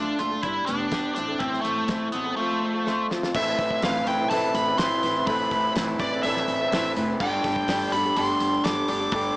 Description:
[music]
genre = folk rock and heartland rock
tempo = 124 BPM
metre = 4/4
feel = straight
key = unclear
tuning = A4 = 439 Hz
[part]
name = nasal lead guitar with a parked wah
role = melody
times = 0.0-9.4 s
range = A3 to D6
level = -25 LUFS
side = equal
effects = overdrive, slapback echo
[part]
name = picked swing-style acoustic guitar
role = accompaniment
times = 0.0-9.4 s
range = A2 to B4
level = -32 LUFS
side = left 1 dB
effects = none
[part]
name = tonewheel organ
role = sustained chords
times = 0.0-9.4 s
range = G3 to A4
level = -37 LUFS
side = equal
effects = none
[part]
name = electric guitar through a small old amp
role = riff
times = 0.0-9.4 s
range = G2 to B4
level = -29 LUFS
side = equal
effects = none
[part]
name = upright bass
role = bass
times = 0.0-9.4 s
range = F1 to F2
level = -35 LUFS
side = equal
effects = none
[part]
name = damped 70s drum kit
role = drums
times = 0.2-9.2 s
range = crash cymbal, hi-hat, kick drum, snare drum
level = -32 LUFS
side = equal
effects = none
[part]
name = warm grand piano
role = accompaniment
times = 3.3-9.4 s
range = G4 to G5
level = -33 LUFS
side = right 1 dB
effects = none
[sound]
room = light reverb, small room ambience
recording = small speaker sound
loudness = -22 LUFS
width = side -22 dB against mid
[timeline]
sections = 0.0-3.3 A section; 3.3-9.4 B section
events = drum fill 2.9-3.3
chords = 0.4 G; 1.2 Am; 2.4 F; 3.3 Amadd9; 7.2 Gsus2

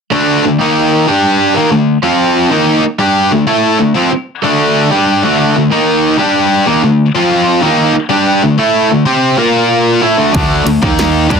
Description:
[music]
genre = hard rock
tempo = 94 BPM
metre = 4/4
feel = straight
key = unclear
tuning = A4 = 440 Hz
[part]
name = cranked stack guitar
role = riff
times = 0.1-11.4 s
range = D3 to C5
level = -12 LUFS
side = right 9 dB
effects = overdrive
[part]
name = tight distorted guitar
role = riff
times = 0.1-11.4 s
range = D3 to C5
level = -12 LUFS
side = left 10 dB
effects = distortion
[part]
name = punchy analog drum machine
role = drums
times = 10.3-11.4 s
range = kick drum, ride cymbal, snare drum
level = -16 LUFS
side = equal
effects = none
[part]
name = fingered electric bass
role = bass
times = 10.4-11.4 s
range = D2 to G2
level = -16 LUFS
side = equal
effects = none
[sound]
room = moderate studio reverb, RT60 0.5 s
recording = dense, heavily limited modern master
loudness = -9 LUFS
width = side -6 dB against mid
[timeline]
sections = 0.1-11.4 A section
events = none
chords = 0.1 Dm; 9.4 Bb5; 10.0 D5

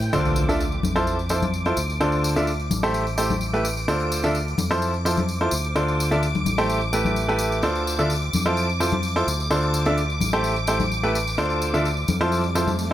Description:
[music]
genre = piano house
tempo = 128 BPM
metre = 4/4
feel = straight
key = D dorian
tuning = A4 = 440 Hz
[part]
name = string machine, violins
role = sustained chords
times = 0.0-12.9 s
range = G5 to D6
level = -30 LUFS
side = equal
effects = ensemble chorus
[part]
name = fingered electric bass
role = bass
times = 0.0-12.9 s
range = A1 to A2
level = -26 LUFS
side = equal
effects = low-pass filter
[part]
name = tambourine and congas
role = percussion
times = 0.0-12.9 s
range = none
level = -29 LUFS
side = left 4 dB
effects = none
[part]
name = bright upright piano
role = riff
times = 0.1-12.9 s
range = D3 to E5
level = -23 LUFS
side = equal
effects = dub echo
[part]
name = impact and riser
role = sound effects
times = 0.1-2.0, 12.0-12.9 s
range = none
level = -30 LUFS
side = equal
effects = none
[sound]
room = light reverb, digital ambience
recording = none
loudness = -20 LUFS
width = side -12 dB against mid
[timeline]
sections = 0.1-12.9 A section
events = impact 0.1-2.0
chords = 0.1 Dm7; 0.8 Fmaj7; 1.8 Dm7; 2.7 Am7; 3.9 Dm7; 4.6 Fmaj7; 5.5 Dm7; 6.5 Am7; 7.6 Dm7; 8.3 Fmaj7; 9.3 Dm7; 10.2 Am7; 11.4 Dm7; 12.1 Fmaj7

